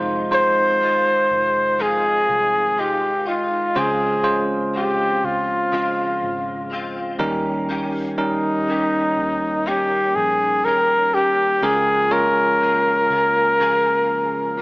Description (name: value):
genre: pop ballad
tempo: 61 BPM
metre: 4/4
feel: straight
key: unclear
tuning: A4 = 441 Hz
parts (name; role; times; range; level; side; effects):
- bell-like tine electric piano; accompaniment; 0.0-14.6 s; Db3 to Db5; -25 LUFS; right 1 dB; none
- direct-recorded clean electric guitar; arpeggios; 0.0-14.6 s; F2 to Ab4; -30 LUFS; left 2 dB; ensemble chorus
- vintage muted fingered electric bass; bass; 0.0-14.6 s; F1 to Eb2; -41 LUFS; equal; none
- warm flugelhorn; melody; 0.3-14.6 s; Eb4 to C5; -17 LUFS; equal; none
room: moderate recital hall reverb, RT60 1.8 s, digital ambience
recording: small speaker sound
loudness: -17 LUFS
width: side -24 dB against mid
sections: 0.0-14.6 A section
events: none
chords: 0.0 Fm7; 3.8 Dbmaj7; 7.2 Eb7; 11.6 Bbm7/Db